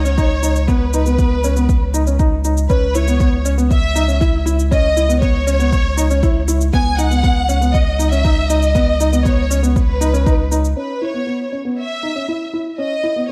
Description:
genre	piano and strings electronica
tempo	119 BPM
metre	4/4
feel	straight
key	C# minor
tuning	A4 = 439 Hz
part	warm symphonic violin section	melody	0.0-13.3 s	B4 to G#5	-24 LUFS	equal	none
part	warm upright piano	riff	0.0-13.3 s	B3 to E4	-23 LUFS	equal	low-pass filter, digital delay
part	round analog bass	bass	0.0-10.7 s	C#2	-19 LUFS	equal	tube saturation, sidechain pumping
part	shaker	drums	0.1-10.7 s	none	-31 LUFS	equal	low-pass filter on perc
part	electronic kick drum	drums	0.2-10.4 s	none	-18 LUFS	equal	overdrive
room	light reverb, small room ambience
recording	none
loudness	-16 LUFS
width	mono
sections	0.0-10.8 A section; 10.8-13.3 B section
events	filter sweep on upright piano 10.8-13.3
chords	0.0 C#7sus2; 2.7 C#m7; 6.7 C#7sus2; 10.8 C#m7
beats	0.18 | 0.69 1.19 1.70 2.20 | 2.70 3.21 3.71 4.22 | 4.72 5.22 5.73 6.23 | 6.74 7.24 7.75 8.25 | 8.75 9.26 9.76 10.27 | 10.77 11.27 11.78 12.28 | 12.79 13.29

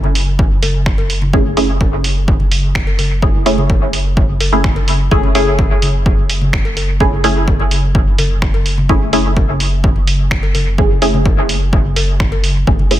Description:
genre	dub techno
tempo	127 BPM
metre	4/4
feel	straight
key	F# minor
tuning	A4 = 439 Hz
part	soft dub sub bass	bass	0.0-13.0 s	F#1	-17 LUFS	equal	sidechain pumping
part	congas and cowbell	percussion	0.0-12.9 s	none	-23 LUFS	left 2 dB	overdrive, sidechain pumping on perc, dub echo
part	lo-fi sampler-style drum kit	drums	0.2-13.0 s	finger snaps, hi-hat	-21 LUFS	right 2 dB	dub echo
part	electronic kick drum	drums	0.4-12.8 s	none	-15 LUFS	equal	none
part	filtered dub chord stab	stabs	1.3-13.0 s	A3 to G#4	-18 LUFS	equal	chorus, phaser, sidechain pumping, dub echo
room	little or no reverb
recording	none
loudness	-11 LUFS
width	side -13 dB against mid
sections	0.0-12.7 A section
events	none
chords	0.0 F#m9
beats	0.39 0.86 | 1.33 1.81 2.28 2.75 | 3.23 3.70 4.17 4.64 | 5.11 5.59 6.06 6.53 | 7.00 7.48 7.95 8.42 | 8.89 9.37 9.84 10.31 | 10.78 11.26 11.73 12.20 | 12.67

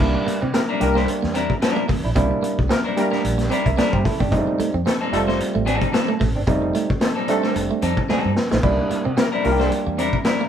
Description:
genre	funk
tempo	111 BPM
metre	4/4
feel	swing 56% on 16ths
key	C mixolydian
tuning	A4 = 440 Hz
part	overdriven clav	stabs	0.0-10.0 s	G3 to G5	-22 LUFS	right 2 dB	none
part	vintage muted fingered electric bass	bass	0.0-10.1 s	F1 to C3	-25 LUFS	equal	none
part	vintage drum kit	drums	0.0-10.4 s	crash cymbal, hi-hat, kick drum, snare drum	-23 LUFS	left 1 dB	none
part	clean electric guitar	riff	0.1-10.5 s	A3 to C4	-27 LUFS	right 5 dB	none
part	mellow horn section	second line	0.5-9.8 s	A3 to Bb4	-25 LUFS	left 3 dB	none
part	clean electric guitar	accompaniment	0.7-10.4 s	G3 to C5	-24 LUFS	left 3 dB	spring reverb
room	light reverb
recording	band playing live in one room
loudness	-18 LUFS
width	side -9 dB against mid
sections	0.0-10.5 A section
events	drum fill 8.1-8.6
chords	0.0 C9; 4.3 F9; 8.6 C9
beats	| 0.00 0.54 1.08 1.62 | 2.16 2.70 3.24 3.78 | 4.32 4.86 5.40 5.94 | 6.48 7.02 7.56 8.10 | 8.64 9.18 9.72 10.26

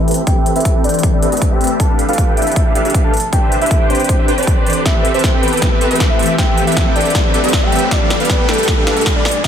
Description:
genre	future bass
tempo	157 BPM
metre	4/4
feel	half-time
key	A minor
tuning	A4 = 440 Hz
part	soft octave-layered synth lead	melody	0.0-9.5 s	A4 to A5	-19 LUFS	left 1 dB	chorus, sidechain pumping, ping-pong delay
part	ethereal airy pad	sustained chords	0.0-9.5 s	E3 to A4	-23 LUFS	left 2 dB	ensemble chorus, built-in reverb, phaser, sidechain pumping
part	supersaw chords	riff	0.0-9.5 s	C4 to G5	-18 LUFS	right 1 dB	wide subtle chorus, sidechain pumping, low-pass filter
part	riser	sound effects	2.2-9.5 s	none	-28 LUFS	left 1 dB	none
part	big-room dance drum kit	drums	0.1-9.5 s	hi-hat, snare drum	-20 LUFS	equal	high-pass filter on snare, high-pass filter on hats, high-pass filter on room
part	electronic kick drum	drums	0.3-9.5 s	none	-15 LUFS	equal	none
room	light reverb, digital ambience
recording	none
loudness	-11 LUFS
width	side -8 dB against mid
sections	0.0-9.5 A section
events	build-up 0.0-9.5; filter sweep on supersaw synth 0.0-9.5; filter sweep on soft synth lead 0.0-9.5; filter sweep on ambient pad 0.0-9.5; drum fill 4.9-9.5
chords	0.0 Am9; 1.8 G9/B; 3.1 Cmaj9; 4.9 Am9; 7.9 G9/B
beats	| 0.27 0.65 1.03 1.42 | 1.80 2.18 2.56 2.94 | 3.33 3.71 4.09 4.47 | 4.86 5.24 5.62 6.00 | 6.38 6.77 7.15 7.53 | 7.91 8.30 8.68 9.06 | 9.44

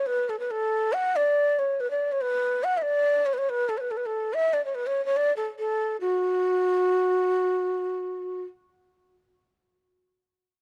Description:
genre	balkan folk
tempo	143 BPM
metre	2/4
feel	straight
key	unclear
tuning	A4 = 435 Hz
part	breathy mellow ney	solo	0.0-8.4 s	F#4 to F#5	-26 LUFS	equal	none
room	little or no reverb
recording	dry, close 1970s-style studio recording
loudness	-26 LUFS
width	mono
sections	0.0-6.0 A section; 6.0-7.6 B section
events	none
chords	none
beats	| 0.08 0.51 | 0.93 1.35 | 1.78 2.20 | 2.62 3.05 | 3.47 3.89 | 4.31 4.73 | 5.15 5.57 | 5.99 6.40 | 6.82 7.23

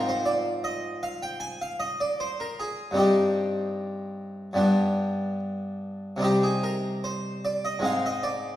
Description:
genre	classical, baroque-style suite movement for harpsichord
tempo	76 BPM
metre	4/4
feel	rubato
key	C minor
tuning	A4 = 439 Hz
part	harpsichord	solo	0.0-8.6 s	G2 to Ab5	-24 LUFS	equal	none
room	wet recital hall reverb, RT60 1.6 s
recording	heard from further back in the room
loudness	-24 LUFS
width	side -13 dB against mid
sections	0.0-8.6 A section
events	none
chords	0.0 Fm/Ab; 3.0 Cm/G; 4.6 G; 6.2 Cm; 7.8 Ab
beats	0.64 1.41 2.19 | 2.98 3.77 4.58 5.39 | 6.21 7.03 7.83

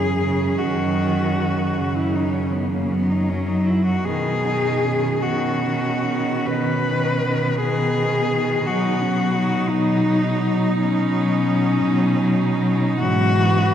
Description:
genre	classical, lyrical piece for cello ensemble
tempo	48-58 BPM (dotted quarters)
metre	12/8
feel	rubato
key	unclear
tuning	A4 = 440 Hz
part	rich cello	melody	0.0-13.7 s	A#3 to B4	-23 LUFS	left 3 dB	none
part	rich cello	second line	0.0-13.7 s	B3 to D#4	-27 LUFS	right 6 dB	none
part	rich cello	accompaniment	0.0-13.7 s	C#3 to F#3	-24 LUFS	left 1 dB	none
part	rich cello	bass	0.0-13.7 s	F#2 to B2	-23 LUFS	right 1 dB	none
room	wet cathedral reverb, RT60 5.2 s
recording	recorded in a church or concert hall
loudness	-18 LUFS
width	side -9 dB against mid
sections	0.0-13.7 A section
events	none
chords	0.0 F#5; 4.1 B; 8.7 F#5/B; 13.0 E/G#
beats	0.59 1.77 2.92 | 4.07 5.25 6.48 7.61 | 8.67 9.72 10.79 11.84 | 13.00

